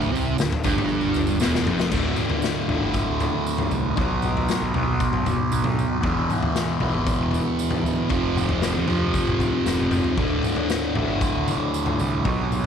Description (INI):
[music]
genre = psychedelic rock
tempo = 116 BPM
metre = 4/4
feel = straight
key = D dorian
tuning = A4 = 440 Hz
[part]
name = fuzz guitar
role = riff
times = 0.0-12.7 s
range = D2 to B3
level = -23 LUFS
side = right 1 dB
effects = distortion, phaser
[part]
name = fuzz picked electric bass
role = bass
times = 0.0-12.7 s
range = D1 to F2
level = -27 LUFS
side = right 1 dB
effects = overdrive
[part]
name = tambourine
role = percussion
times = 0.0-12.6 s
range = none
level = -41 LUFS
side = right 13 dB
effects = none
[part]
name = raw garage drum kit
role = drums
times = 0.4-12.6 s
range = crash cymbal, kick drum, snare drum, toms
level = -26 LUFS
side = left 3 dB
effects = none
[sound]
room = light reverb, small room ambience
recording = 1960s-style stereo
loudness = -20 LUFS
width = side -7 dB against mid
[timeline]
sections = 0.0-1.9 A section; 1.9-12.7 B section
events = drum fill 1.4-1.9, 9.7-10.2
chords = 0.0 Dm; 1.9 D5; 4.0 B5; 6.0 E5; 8.1 F5; 10.2 D5